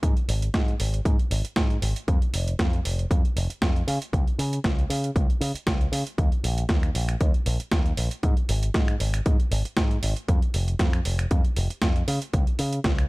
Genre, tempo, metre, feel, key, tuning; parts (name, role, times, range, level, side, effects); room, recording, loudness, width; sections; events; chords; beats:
nu-disco, nu disco; 117 BPM; 4/4; swing 54% on 16ths; A4 = 441 Hz
picked electric bass with an envelope filter; bass; 0.0-13.0 s; F1 to Db3; -26 LUFS; equal
dusty soul sampler-style drum kit; drums; 0.0-13.1 s; finger snaps, hi-hat, snare drum; -30 LUFS; right 1 dB; overdrive
electronic kick drum; drums; 0.0-13.0 s; -23 LUFS; equal; overdrive
little or no reverb; -22 LUFS; side -23 dB against mid
0.0-13.1 A section
| 0.03 0.54 1.05 1.57 | 2.08 2.59 3.11 3.62 | 4.13 4.64 5.16 5.67 | 6.18 6.70 7.21 7.72 | 8.23 8.75 9.26 9.77 | 10.29 10.80 11.31 11.82 | 12.34 12.85